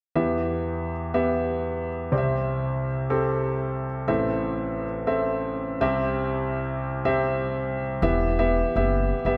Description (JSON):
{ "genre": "pop", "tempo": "122 BPM", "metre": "4/4", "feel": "straight", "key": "E minor", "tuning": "A4 = 444 Hz", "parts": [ { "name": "clear concert grand piano", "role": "accompaniment", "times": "0.2-9.4 s", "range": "A1 to E5", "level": "-26 LUFS", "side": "equal", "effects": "none" }, { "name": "upright bass", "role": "bass", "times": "8.0-9.4 s", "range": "E1 to G1", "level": "-28 LUFS", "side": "equal", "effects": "none" } ], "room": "moderate concert hall reverb, RT60 1.8 s", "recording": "none", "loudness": "-26 LUFS", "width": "mono", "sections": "0.1-8.0 A section; 8.0-9.4 B section", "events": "none", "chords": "0.1 Em; 2.1 C; 4.1 Am; 5.8 C; 8.0 Em" }